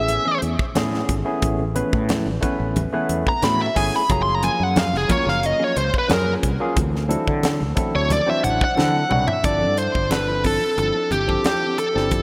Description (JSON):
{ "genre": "electric jazz fusion", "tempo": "90 BPM", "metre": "4/4", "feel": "straight", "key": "unclear", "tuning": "A4 = 440 Hz", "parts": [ { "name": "bluesy overdriven lead guitar", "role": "melody", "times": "0.0-12.2 s", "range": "G4 to C6", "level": "-24 LUFS", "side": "equal", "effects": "distortion" }, { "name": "barky tine electric piano", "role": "accompaniment", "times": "0.0-12.2 s", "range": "F3 to C5", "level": "-28 LUFS", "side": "equal", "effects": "overdrive, lush chorus" }, { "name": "fretless electric bass", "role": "bass", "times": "0.0-12.2 s", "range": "Gb1 to D3", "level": "-27 LUFS", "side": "equal", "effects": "subtle chorus" }, { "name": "mellow electric guitar", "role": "stabs", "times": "0.1-12.2 s", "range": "E3 to A4", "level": "-33 LUFS", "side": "equal", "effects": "none" }, { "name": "crisp fusion drum kit", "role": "drums", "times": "0.1-12.2 s", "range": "hi-hat, kick drum, snare drum, toms", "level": "-27 LUFS", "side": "equal", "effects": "none" }, { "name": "congas", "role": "percussion", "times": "0.1-12.2 s", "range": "none", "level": "-31 LUFS", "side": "equal", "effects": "none" } ], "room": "moderate lush hall reverb, RT60 2.9 s", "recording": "bright 1980s-style digital production", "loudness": "-20 LUFS", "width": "mono", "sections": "0.0-9.4 A section; 9.4-12.2 B section", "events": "lead electric guitar solo 0.0-9.4; drum fill 8.8-9.4", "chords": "0.0 Amaj9; 4.1 Gbmaj9; 6.8 D9; 9.4 G13sus4" }